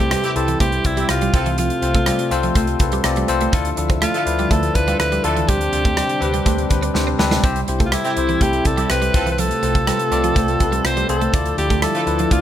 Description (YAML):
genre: 1980s-style pop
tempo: 123 BPM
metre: 4/4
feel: straight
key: C major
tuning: A4 = 440 Hz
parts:
  - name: edgy alto saxophone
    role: melody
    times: 0.0-12.4 s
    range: E4 to C5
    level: -22 LUFS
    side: equal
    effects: digital delay
  - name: bell-like tine electric piano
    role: accompaniment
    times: 0.0-12.4 s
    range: C3 to A5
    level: -23 LUFS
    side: left 6 dB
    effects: none
  - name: warm analog pad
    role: sustained chords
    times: 0.0-12.4 s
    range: C3 to E5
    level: -27 LUFS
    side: right 1 dB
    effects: chorus
  - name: twelve-string electric guitar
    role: riff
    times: 0.0-12.4 s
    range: E3 to D4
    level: -26 LUFS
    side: right 4 dB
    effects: wide subtle chorus, digital delay
  - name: picked electric bass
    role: bass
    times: 0.0-12.4 s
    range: C2 to D2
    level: -24 LUFS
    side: equal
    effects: none
  - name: modern studio drum kit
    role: drums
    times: 0.1-12.4 s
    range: hi-hat, kick drum, rim click, snare drum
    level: -21 LUFS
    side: right 1 dB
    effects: none
  - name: warm horn section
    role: stabs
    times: 0.2-12.0 s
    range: A3 to A4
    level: -30 LUFS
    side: right 3 dB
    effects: none
room: light reverb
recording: none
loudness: -16 LUFS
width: side -11 dB against mid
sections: 0.0-12.4 A section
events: tine electric piano fill 6.7-7.4; drum fill 6.9-7.4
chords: 0.0 C; 1.3 F/C; 3.5 Dmadd9; 5.5 Gsus4/D; 7.4 C; 9.1 F/C; 11.3 Dmadd9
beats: 0.12 0.61 1.09 | 1.58 2.07 2.56 3.05 | 3.53 4.02 4.51 5.00 | 5.49 5.97 6.46 6.95 | 7.44 7.92 8.41 8.90 | 9.39 9.88 10.36 10.85 | 11.34 11.83 12.31